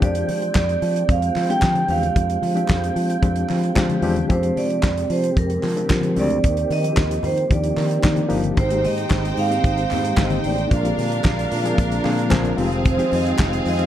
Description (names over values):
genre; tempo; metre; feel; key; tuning
disco; 112 BPM; 4/4; straight; F dorian; A4 = 440 Hz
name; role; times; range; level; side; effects
vibraphone with medium hard mallets; melody; 0.0-13.9 s; Bb4 to G5; -24 LUFS; right 4 dB; none
reed electric piano; accompaniment; 0.0-13.9 s; F3 to Ab4; -25 LUFS; left 3 dB; overdrive, fast tremolo
tonewheel organ; sustained chords; 0.0-13.9 s; C3 to G5; -28 LUFS; right 1 dB; chorus vibrato, slow rotary speaker
fingered electric bass; bass; 0.0-13.9 s; F1 to F3; -24 LUFS; equal; none
damped 70s drum kit; drums; 0.0-13.9 s; handclaps, hi-hat, kick drum, snare drum; -22 LUFS; equal; none
congas; percussion; 0.0-13.8 s; none; -31 LUFS; left 6 dB; none
group handclap; percussion; 0.6-13.5 s; none; -36 LUFS; right 2 dB; none
clear studio string section; second line; 8.6-13.9 s; C4 to G5; -26 LUFS; right 1 dB; none
room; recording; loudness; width
light reverb; dark, warm production; -17 LUFS; side -11 dB against mid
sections
0.0-8.6 A section; 8.6-13.9 B section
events
none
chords
0.0 Fm69; 4.3 Bb13/F; 6.4 Ebmaj7; 8.6 Abmaj7; 10.7 Bb7; 12.6 Fm7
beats
| 0.02 0.56 1.09 1.62 | 2.16 2.69 3.23 3.76 | 4.30 4.83 5.37 5.90 | 6.43 6.97 7.50 8.04 | 8.57 9.11 9.64 10.18 | 10.71 11.25 11.79 12.32 | 12.86 13.39